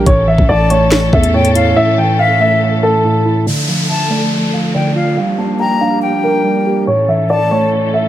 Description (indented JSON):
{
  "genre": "hip hop, drill",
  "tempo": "141 BPM",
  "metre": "4/4",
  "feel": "half-time",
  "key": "D harmonic minor",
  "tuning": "A4 = 440 Hz",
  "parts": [
    { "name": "dark baby grand piano", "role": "melody", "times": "0.0-8.1 s", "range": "A4 to A5", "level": "-15 LUFS", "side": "equal", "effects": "low-pass filter, ping-pong delay" },
    { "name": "breathy silver concert flute", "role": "second line", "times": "0.0-7.7 s", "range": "E5 to Bb5", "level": "-20 LUFS", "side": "left 5 dB", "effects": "ping-pong delay" },
    { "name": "mellow tine electric piano", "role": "accompaniment", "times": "0.0-8.1 s", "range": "A2 to G4", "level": "-16 LUFS", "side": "right 2 dB", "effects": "low-pass filter" },
    { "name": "dark symphonic string section", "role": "sustained chords", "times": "0.0-8.1 s", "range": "E3 to A4", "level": "-22 LUFS", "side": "left 1 dB", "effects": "low-pass filter" },
    { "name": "growling 808-style bass", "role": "bass", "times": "0.0-1.7 s", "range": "A1 to E2", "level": "-15 LUFS", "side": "equal", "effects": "none" },
    { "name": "drill drum kit", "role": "drums", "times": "0.1-1.7 s", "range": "hi-hat, kick drum, snare drum", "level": "-13 LUFS", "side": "equal", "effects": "none" },
    { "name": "downlifter", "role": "sound effects", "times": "3.5-6.9 s", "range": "none", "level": "-22 LUFS", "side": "equal", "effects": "none" }
  ],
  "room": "light reverb, small room ambience",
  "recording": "none",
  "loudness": "-11 LUFS",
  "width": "side -12 dB against mid",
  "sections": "0.0-3.5 A section; 3.5-8.1 B section",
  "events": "drums muted 1.8-3.5; filter sweep 3.5-8.1",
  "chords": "0.1 A; 3.5 Dm; 5.2 Gm7; 6.9 A"
}